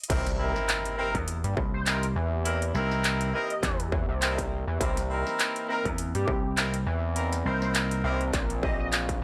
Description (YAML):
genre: glitch hop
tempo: 102 BPM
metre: 4/4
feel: swing 56% on 16ths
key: unclear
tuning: A4 = 441 Hz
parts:
  - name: dubstep drum kit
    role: drums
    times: 0.0-9.2 s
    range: crash cymbal, handclaps, hi-hat, snare drum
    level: -32 LUFS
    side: equal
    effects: studio reverb
  - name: warbly tape-like pad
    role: sustained chords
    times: 0.6-9.2 s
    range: E3 to G4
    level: -42 LUFS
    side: equal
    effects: chorus, built-in reverb, phaser, vintage 12-bit sampler grit, sidechain pumping
  - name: bright horn section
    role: stabs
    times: 0.1-8.8 s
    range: C4 to Bb4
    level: -34 LUFS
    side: equal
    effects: sidechain pumping, tape echo
  - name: gritty driven synth bass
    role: bass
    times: 0.1-9.2 s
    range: Bb1 to G2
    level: -31 LUFS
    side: equal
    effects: none
  - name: electronic kick drum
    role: drums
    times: 0.1-9.2 s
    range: none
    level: -33 LUFS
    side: equal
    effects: distortion, studio reverb
  - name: impact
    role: sound effects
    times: 0.1-2.5 s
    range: none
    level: -39 LUFS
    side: equal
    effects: none
  - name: sync lead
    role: melody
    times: 1.0-8.9 s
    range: G4 to D#5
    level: -37 LUFS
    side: equal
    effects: ensemble chorus, vintage 12-bit sampler grit, tape echo
  - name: vintage slap bass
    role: bass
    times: 1.1-8.0 s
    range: C2 to E2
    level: -32 LUFS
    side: equal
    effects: none
room: digital ambience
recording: dry, gritty hardware recording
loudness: -28 LUFS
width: mono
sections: 0.1-9.2 A section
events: drop 0.1-9.2; impact 0.1-2.5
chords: 0.1 C7#9